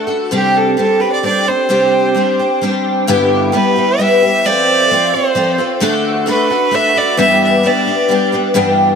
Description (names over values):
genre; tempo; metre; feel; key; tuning
rock; 131 BPM; 3/4; straight; G mixolydian from 3.1 s; A4 = 440 Hz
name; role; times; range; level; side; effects
warm fiddle; melody; 0.0-8.3 s; G4 to E5; -14 LUFS; right 2 dB; tape echo
picked steel-string acoustic guitar; accompaniment; 0.0-9.0 s; G2 to A4; -14 LUFS; left 1 dB; ensemble chorus
room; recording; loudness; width
wet plate reverb, RT60 3.6 s; dreamy mix soaked in reverb; -11 LUFS; side -6 dB against mid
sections
0.0-3.1 A section; 3.1-9.0 B section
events
none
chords
0.3 Csus2; 3.1 G6; 4.4 F; 5.8 D; 7.2 G6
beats
| 0.32 0.78 1.24 | 1.70 2.15 2.61 | 3.07 3.53 3.99 | 4.45 4.90 5.36 | 5.82 6.28 6.73 | 7.19 7.65 8.11 | 8.56